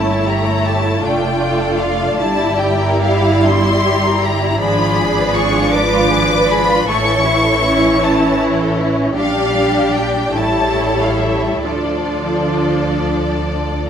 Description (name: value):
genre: classical, slow romantic movement for string orchestra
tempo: 44-54 BPM (dotted quarters)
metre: 6/8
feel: rubato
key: D minor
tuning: A4 = 440 Hz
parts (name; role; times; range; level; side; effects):
- clear symphonic violin section; melody; 0.0-13.9 s; D5 to D6; -20 LUFS; left 2 dB; none
- warm symphonic violin section; second line; 0.0-13.9 s; A3 to D5; -20 LUFS; left 1 dB; none
- clear studio viola section; accompaniment; 0.0-13.9 s; E3 to F4; -18 LUFS; equal; none
- rich studio cello section; bass; 0.0-13.7 s; C#4 to B4; -22 LUFS; right 2 dB; none
- warm symphonic double bass section; bass; 0.0-13.9 s; F1 to D2; -21 LUFS; right 2 dB; none
room: moderate concert hall reverb, RT60 2.2 s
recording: none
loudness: -13 LUFS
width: side -8 dB against mid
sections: 0.0-13.9 A section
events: none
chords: 0.0 A7/G; 1.0 Dm/F; 2.2 Em7b5/G; 4.6 G#dim7; 6.9 A; 9.2 Gm/Bb; 10.4 A7; 11.6 Dm